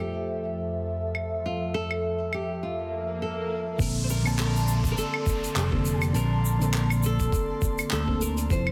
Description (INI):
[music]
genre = sunset chillout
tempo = 102 BPM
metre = 4/4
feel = swing 57% on 16ths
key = unclear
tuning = A4 = 439 Hz
[part]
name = flamenco guitar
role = melody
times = 0.0-8.7 s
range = F4 to C5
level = -35 LUFS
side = equal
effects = digital delay
[part]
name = mellow FM electric piano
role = accompaniment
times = 0.0-8.7 s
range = D3 to A5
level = -34 LUFS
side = equal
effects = chorus, digital delay
[part]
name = airy breathy pad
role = sustained chords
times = 0.0-8.7 s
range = F2 to C6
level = -35 LUFS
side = equal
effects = chorus
[part]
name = jazz brush drum kit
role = drums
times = 1.1-8.7 s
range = claves, handclaps, hi-hat, shaker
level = -35 LUFS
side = equal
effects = none
[part]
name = swell and downlifter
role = sound effects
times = 2.8-8.5 s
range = none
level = -40 LUFS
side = equal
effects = none
[part]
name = fingered electric bass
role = bass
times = 3.8-8.7 s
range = F1 to D2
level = -28 LUFS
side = equal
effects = none
[part]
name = electronic kick drum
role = drums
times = 3.8-8.6 s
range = none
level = -31 LUFS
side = equal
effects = none
[sound]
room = moderate concert hall reverb, RT60 2.0 s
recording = dense, heavily limited modern master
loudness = -27 LUFS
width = mono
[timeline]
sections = 0.0-3.8 A section; 3.8-8.7 B section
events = swell 2.8-3.8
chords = 0.0 Fmaj7; 3.8 Bbmaj9